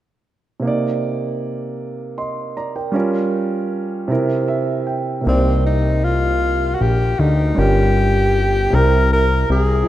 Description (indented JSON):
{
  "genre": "R&B",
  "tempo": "52 BPM (dotted quarters)",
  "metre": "6/8",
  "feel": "straight",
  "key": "C minor",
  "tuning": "A4 = 440 Hz",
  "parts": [
    { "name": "warm concert grand piano", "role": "accompaniment", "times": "0.6-9.9 s", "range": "C3 to C6", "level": "-21 LUFS", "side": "right 3 dB", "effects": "none" },
    { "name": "warm tenor saxophone", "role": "melody", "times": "5.3-9.9 s", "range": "C4 to Bb4", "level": "-18 LUFS", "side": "left 1 dB", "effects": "none" },
    { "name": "fat analog bass", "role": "bass", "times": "5.3-9.8 s", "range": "G1 to D2", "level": "-17 LUFS", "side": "left 1 dB", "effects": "none" }
  ],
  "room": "moderate plate reverb, RT60 3.0 s",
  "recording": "rough home demo mix",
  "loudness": "-16 LUFS",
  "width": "side -13 dB against mid",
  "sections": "0.6-5.3 A section; 5.3-9.9 B section",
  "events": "grand piano fill 4.1-5.3",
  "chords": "0.6 Cm9; 2.9 Gm7b5; 4.1 C7; 5.3 Cm9; 7.6 Gm7b5; 8.7 C7",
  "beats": "| 0.64 1.79 | 2.94 4.10 | 5.25 6.41 | 7.56 8.71 | 9.87"
}